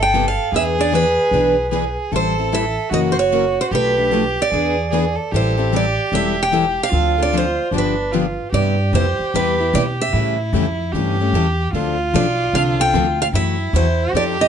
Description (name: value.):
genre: acoustic string swing (jazz manouche).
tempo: 150 BPM.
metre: 4/4.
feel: swing 64% on 8ths.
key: A minor, C major from 8.5 s.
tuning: A4 = 440 Hz.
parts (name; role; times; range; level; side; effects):
picked steel-string acoustic guitar; melody; 0.0-14.5 s; B4 to G5; -19 LUFS; right 2 dB; none.
warm violin; second line; 0.0-14.5 s; D4 to A4; -23 LUFS; right 3 dB; none.
upright bass; bass; 0.0-14.5 s; E1 to B2; -22 LUFS; equal; none.
picked plugged-in acoustic archtop guitar; accompaniment; 0.1-14.5 s; B2 to A4; -22 LUFS; left 9 dB; none.
picked steel-string acoustic guitar; accompaniment; 0.1-14.4 s; B2 to B4; -26 LUFS; right 6 dB; none.
room: light reverb.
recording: nothing above 10.9 kHz.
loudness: -16 LUFS.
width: side -8 dB against mid.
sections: 0.0-8.5 A section; 8.5-14.5 B section.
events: none.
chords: 0.0 Cmaj7; 0.5 E7; 2.1 Am7; 2.9 F#7; 3.7 Bm7b5; 4.5 E7; 5.3 Am7; 6.9 Dm7; 7.7 G7; 8.5 Cmaj7; 10.1 A7; 11.7 Dm7; 13.3 F#m7b5.